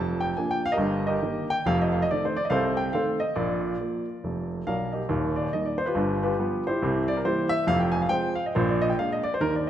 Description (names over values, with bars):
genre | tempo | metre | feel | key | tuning
jazz, stride piano | 140 BPM | 4/4 | swing 62% on 8ths | Eb major | A4 = 441 Hz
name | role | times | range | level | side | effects
warm grand piano | solo | 0.0-9.7 s | Eb1 to Ab5 | -23 LUFS | equal | none
room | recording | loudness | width
moderate scoring stage reverb, RT60 1.5 s | none | -23 LUFS | side -10 dB against mid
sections
0.0-5.1 A section; 5.1-9.7 A section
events
none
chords
0.0 Bb/F; 0.8 Eb/G; 1.7 F7; 3.4 Bb; 5.1 Eb; 6.0 G7; 6.8 C7; 7.7 Fm; 8.5 Bb7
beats
0.38 0.81 1.24 | 1.67 2.10 2.52 2.95 | 3.38 3.81 4.24 4.67 | 5.10 5.53 5.95 6.38 | 6.81 7.24 7.67 8.10 | 8.53 8.95 9.38